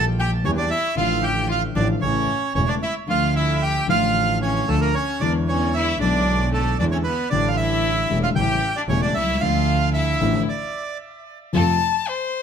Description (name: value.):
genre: tango.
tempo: 114 BPM.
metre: 4/4.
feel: rubato.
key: D harmonic minor.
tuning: A4 = 439 Hz.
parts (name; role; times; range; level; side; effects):
bandoneon; melody; 0.0-11.0 s; A4 to G5; -24 LUFS; right 5 dB; tape echo.
warm violin; second line; 0.0-12.4 s; A3 to A5; -26 LUFS; left 6 dB; none.
dark concert grand piano; accompaniment; 0.0-11.8 s; E1 to G4; -24 LUFS; left 4 dB; none.
warm double bass; bass; 0.0-11.8 s; E1 to F2; -24 LUFS; right 2 dB; none.
clear studio string section; stabs; 11.5-11.8 s; C4 to A4; -29 LUFS; right 1 dB; none.
room: moderate studio reverb, RT60 0.7 s.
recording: none.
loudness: -18 LUFS.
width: side -7 dB against mid.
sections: 0.0-11.5 A section.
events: stop 10.5-11.5.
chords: 0.0 Edim; 1.0 Dm/A; 2.0 A; 3.1 Dm; 5.2 E7; 7.3 A7sus4; 8.4 A7; 9.4 Dmadd9; 11.5 F.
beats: 0.46 | 0.98 1.50 2.03 2.56 | 3.10 3.63 4.16 4.68 | 5.21 5.74 6.27 6.79 | 7.31 7.84 8.36 8.89 | 9.41 9.94 10.47 11.00 | 11.54 12.07.